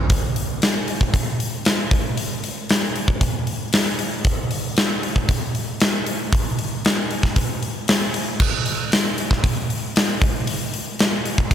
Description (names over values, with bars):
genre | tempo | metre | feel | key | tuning
rock | 116 BPM | 4/4 | straight | none | none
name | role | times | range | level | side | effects
huge arena drum kit | drums | 0.1-11.5 s | crash cymbal, hi-hat, kick drum, snare drum | -18 LUFS | equal | none
room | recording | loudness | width
light reverb | none | -19 LUFS | side -9 dB against mid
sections
0.1-11.5 A section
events
none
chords
none